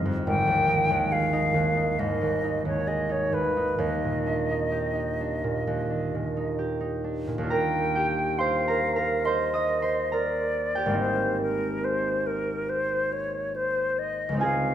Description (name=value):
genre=classical, impressionist duo for flute and harp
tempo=64-71 BPM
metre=4/4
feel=rubato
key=Eb major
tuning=A4 = 440 Hz
part: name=concert harp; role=accompaniment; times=0.0-14.7 s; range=G1 to Eb6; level=-26 LUFS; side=right 2 dB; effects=none
part: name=silver concert flute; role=melody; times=0.3-14.7 s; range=Bb4 to G5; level=-27 LUFS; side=left 2 dB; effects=none
room=wet recital hall reverb, RT60 1.7 s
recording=minimal, uncompressed stereo recording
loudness=-24 LUFS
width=side -10 dB against mid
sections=0.0-7.5 A section; 7.5-14.7 B section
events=none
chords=0.3 Ab5; 3.8 Ebmaj7; 7.5 Ebmaj9; 11.0 Abadd9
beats=| 0.26 1.12 1.99 2.88 | 3.79 4.72 5.65 6.57 | 7.50 8.39 9.26 10.12 | 10.98 11.85 12.71 13.56 | 14.41